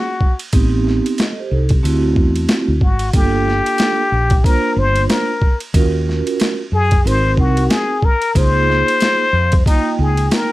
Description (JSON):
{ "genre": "hip hop, jazz-hop", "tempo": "92 BPM", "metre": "4/4", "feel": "swing 60% on 16ths", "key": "unclear", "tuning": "A4 = 441 Hz", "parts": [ { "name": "trumpet with plunger mute", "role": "melody", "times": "0.0-10.5 s", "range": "Eb4 to C5", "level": "-17 LUFS", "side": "left 3 dB", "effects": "none" }, { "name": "vibraphone with medium mallets", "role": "accompaniment", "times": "0.0-10.5 s", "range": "A3 to G5", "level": "-20 LUFS", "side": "right 3 dB", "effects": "none" }, { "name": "boom bap sampler-style drum kit", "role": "drums", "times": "0.2-10.5 s", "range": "hi-hat, kick drum, ride cymbal, snare drum", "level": "-17 LUFS", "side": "equal", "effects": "overdrive" }, { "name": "woody fretless electric bass", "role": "bass", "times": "0.5-10.3 s", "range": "G1 to Gb2", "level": "-17 LUFS", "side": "equal", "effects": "wide subtle chorus" } ], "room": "light reverb", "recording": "none", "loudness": "-13 LUFS", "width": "side -17 dB against mid", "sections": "0.0-10.5 A section", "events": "none", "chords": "0.0 N.C.; 0.5 Am7b5; 1.8 D7; 3.1 Gm7; 5.7 Ebm9; 7.1 Ab7; 8.4 Db69" }